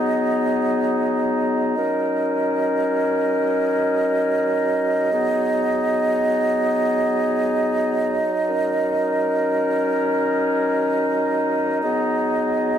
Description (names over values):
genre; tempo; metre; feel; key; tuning
hip hop; free time; none; none; F# major; A4 = 440 Hz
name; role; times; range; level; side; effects
mellow woodwind section; solo; 0.0-12.8 s; F#3 to D#5; -18 LUFS; equal; tape echo
room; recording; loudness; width
moderate spring reverb, RT60 1.8 s, studio ambience; echo-heavy mix; -18 LUFS; side -9 dB against mid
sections
0.0-12.8 A section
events
none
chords
0.0 B6; 1.8 F#6; 5.1 B6; 8.5 F#6; 11.8 B6